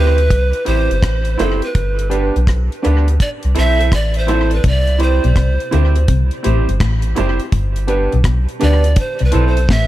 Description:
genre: roots reggae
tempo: 83 BPM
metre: 4/4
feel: swing 65% on 16ths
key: unclear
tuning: A4 = 438 Hz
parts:
  - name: breathy bright pan flute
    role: melody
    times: 0.0-9.9 s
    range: A4 to E5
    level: -21 LUFS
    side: right 2 dB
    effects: dub echo
  - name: mellow electric guitar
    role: accompaniment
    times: 0.0-9.6 s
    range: D4 to C5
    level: -23 LUFS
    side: right 7 dB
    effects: dub echo
  - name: warm upright piano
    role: stabs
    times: 0.0-9.6 s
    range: B3 to C5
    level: -25 LUFS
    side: left 3 dB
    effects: none
  - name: soft dub sub bass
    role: bass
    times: 0.0-9.9 s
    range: F#1 to D2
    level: -15 LUFS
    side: equal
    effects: none
  - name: deep reggae drum kit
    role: drums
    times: 0.2-9.9 s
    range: hi-hat, kick drum, rim click, snare drum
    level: -18 LUFS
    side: equal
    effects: tape echo
  - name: bongos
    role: percussion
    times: 1.4-8.8 s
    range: none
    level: -25 LUFS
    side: right 5 dB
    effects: none
  - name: mellow electric guitar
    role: riff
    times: 4.6-9.9 s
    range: F#2 to D3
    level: -21 LUFS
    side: left 4 dB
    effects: phaser
room: small room ambience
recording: echo-heavy mix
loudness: -13 LUFS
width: side -15 dB against mid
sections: 0.0-9.9 A section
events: pan flute solo 0.0-9.9; drum fill 9.7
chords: 0.0 C; 1.8 G; 3.2 Am; 4.6 C; 7.5 G; 9.0 Am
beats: 0.31 1.03 | 1.75 2.47 3.19 3.92 | 4.64 5.36 6.08 6.80 | 7.52 8.25 8.97 9.69

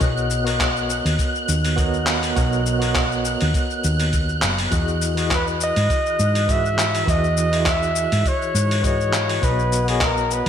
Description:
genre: sunset chillout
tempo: 102 BPM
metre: 4/4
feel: swing 55% on 16ths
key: E lydian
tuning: A4 = 435 Hz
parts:
  - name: mellow tine electric piano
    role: accompaniment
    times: 0.0-10.5 s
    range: E3 to E5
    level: -25 LUFS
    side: moving between left 7 dB and right 6 dB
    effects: medium tremolo, auto-pan, low-pass filter, ping-pong delay
  - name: woody fretless electric bass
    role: bass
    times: 0.0-10.5 s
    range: F#1 to G#2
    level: -22 LUFS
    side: equal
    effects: none
  - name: dusty soul sampler-style drum kit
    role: drums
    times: 0.0-10.5 s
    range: handclaps, hi-hat, shaker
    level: -24 LUFS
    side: left 1 dB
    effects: overdrive, gated reverb
  - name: electronic kick drum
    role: drums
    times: 0.0-10.1 s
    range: none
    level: -24 LUFS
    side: equal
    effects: none
  - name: wind-like tuned noise texture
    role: texture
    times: 0.0-10.5 s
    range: F#6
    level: -29 LUFS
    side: right 2 dB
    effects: built-in reverb, analog chorus
  - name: warm flugelhorn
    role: melody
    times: 5.3-10.5 s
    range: G#4 to E5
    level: -22 LUFS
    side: equal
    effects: ping-pong delay
room: moderate plate reverb, RT60 2.1 s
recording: bright 1980s-style digital production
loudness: -18 LUFS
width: side -9 dB against mid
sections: 0.0-10.5 A section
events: none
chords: 0.0 Bmaj9; 4.7 Emaj9; 9.4 Bmaj9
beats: | 0.02 0.61 1.20 1.78 | 2.37 2.96 3.55 4.14 | 4.72 5.31 5.90 6.49 | 7.08 7.67 8.26 8.84 | 9.43 10.02

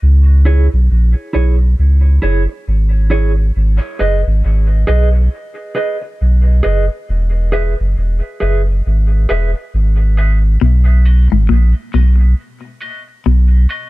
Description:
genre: reggae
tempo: 68 BPM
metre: 4/4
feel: swing 60% on 16ths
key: B major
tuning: A4 = 440 Hz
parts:
  - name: soft dub sub bass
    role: bass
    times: 0.0-13.7 s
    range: E1 to C#2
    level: -10 LUFS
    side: equal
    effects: none
  - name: mellow electric guitar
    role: accompaniment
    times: 0.5-13.9 s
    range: E4 to E5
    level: -22 LUFS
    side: right 2 dB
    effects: tremolo, high-pass filter, dub echo
  - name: semi-hollow electric guitar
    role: riff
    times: 10.6-13.5 s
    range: G#2 to B2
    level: -18 LUFS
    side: left 8 dB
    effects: none
room: digital ambience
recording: none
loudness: -11 LUFS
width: side -19 dB against mid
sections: 0.0-10.6 A section; 10.6-13.9 B section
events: filter sweep on clean electric guitar 7.1-13.9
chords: 0.0 C#m; 3.5 G#m; 7.1 E; 10.6 B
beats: | 0.01 0.90 1.78 2.66 | 3.55 4.43 5.31 6.20 | 7.08 7.96 8.85 9.73 | 10.61 11.49 12.38 13.26

